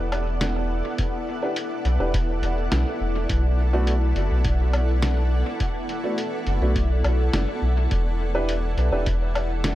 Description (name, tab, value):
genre	ambient dub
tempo	104 BPM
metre	4/4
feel	straight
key	unclear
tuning	A4 = 440 Hz
part	granular cloud pad	sustained chords	0.0-9.8 s	B3 to F#5	-28 LUFS	equal	built-in reverb
part	soft dub sub bass	bass	0.0-9.8 s	E1 to B1	-22 LUFS	equal	tube saturation
part	lo-fi sampler-style drum kit	drums	0.1-9.8 s	hi-hat, snare drum, woodblock	-29 LUFS	equal	dub echo
part	electronic kick drum	drums	1.0-9.2 s	none	-26 LUFS	equal	none
part	dark upright piano	stabs	1.4-9.0 s	A3 to B4	-31 LUFS	right 1 dB	dub echo
room	little or no reverb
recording	none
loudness	-21 LUFS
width	side -14 dB against mid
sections	0.0-9.8 A section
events	none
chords	0.0 E7(no3); 3.3 Bm7; 7.9 Em7